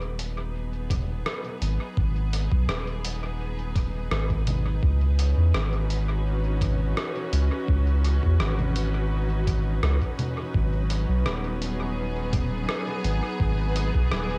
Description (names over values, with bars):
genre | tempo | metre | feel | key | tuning
ambient dub | 84 BPM | 4/4 | straight | G# minor | A4 = 443 Hz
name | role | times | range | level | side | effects
clear symphonic string section | sustained chords | 0.0-14.4 s | E3 to B4 | -35 LUFS | equal | cassette tape
soft dub sub bass | bass | 0.0-14.4 s | D#1 to E2 | -27 LUFS | equal | none
lo-fi sampler-style drum kit | drums | 0.2-14.3 s | congas, hi-hat, rim click | -35 LUFS | equal | cassette tape, dub echo
electronic kick drum | drums | 0.9-14.1 s | none | -30 LUFS | equal | cassette tape
room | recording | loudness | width
little or no reverb | home recording on cassette | -26 LUFS | mono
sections
0.0-14.4 A section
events
fade-in on string section 0.0-14.4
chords
0.0 G#m7; 4.8 C#m11; 10.5 G#m7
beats
0.55 1.26 | 1.97 2.69 3.40 4.12 | 4.83 5.54 6.26 6.97 | 7.69 8.40 9.12 9.83 | 10.54 11.26 11.97 12.69 | 13.40 14.12